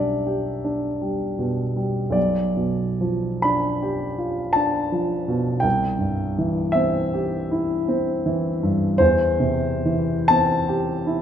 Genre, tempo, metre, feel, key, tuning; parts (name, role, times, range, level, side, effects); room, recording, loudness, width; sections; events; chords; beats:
classical, romantic nocturne for solo piano; 42-56 BPM (dotted quarters); 9/8; rubato; C major; A4 = 440 Hz
warm grand piano; solo; 0.0-11.2 s; B1 to B5; -20 LUFS; equal
wet recital hall reverb, RT60 1.7 s; minimal, uncompressed stereo recording; -20 LUFS; side -9 dB against mid
0.0-11.2 A section
0.0 G/B; 2.2 G7/B; 5.6 C; 9.0 C/E
1.03 | 2.16 3.44 4.56 | 5.65 6.77 7.90 | 9.00 10.30